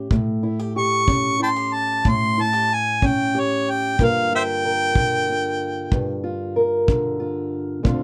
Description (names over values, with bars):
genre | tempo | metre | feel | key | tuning
acoustic country blues, solo or duo | 62 BPM (dotted quarters) | 12/8 | straight | unclear | A4 = 440 Hz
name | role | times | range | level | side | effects
fingerpicked old ladder-braced acoustic guitar | accompaniment | 0.0-8.0 s | D2 to Bb4 | -25 LUFS | equal | none
kick drum | drums | 0.1-8.0 s | none | -24 LUFS | equal | none
mellow harmonica | melody | 0.8-6.2 s | C5 to C#6 | -23 LUFS | equal | none
room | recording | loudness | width
light reverb | none | -21 LUFS | mono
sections
0.0-8.0 A section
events
harmonica solo 0.0-8.0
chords
0.0 A7; 4.0 Gm7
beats
| 0.11 1.08 2.05 3.02 | 3.99 4.95 5.92 6.89 | 7.86